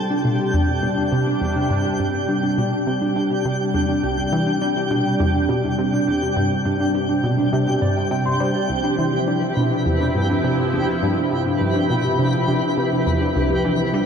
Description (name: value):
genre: ambient, sequencer-driven space music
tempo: 103 BPM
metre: 4/4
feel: straight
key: unclear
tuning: A4 = 437 Hz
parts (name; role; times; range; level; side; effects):
- sweeping resonant pad; sustained chords; 0.0-14.1 s; C3 to E4; -23 LUFS; equal; chorus, shimmer reverb
- analog pluck; riff; 0.0-14.1 s; C2 to G3; -23 LUFS; equal; chorus, tape echo
- twinkling granular texture; texture; 0.0-14.1 s; G4 to G5; -25 LUFS; equal; built-in reverb, shimmer reverb
- mellow electric guitar; arpeggios; 0.1-14.1 s; D4 to C6; -24 LUFS; left 2 dB; auto-pan, low-pass filter, tape echo, shimmer reverb
room: wet huge ambient reverb, RT60 8.1 s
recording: dark, warm production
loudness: -18 LUFS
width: side -7 dB against mid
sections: 0.0-14.1 A section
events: filter sweep on synth arpeggio sound 0.0-14.1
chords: 0.0 Csus2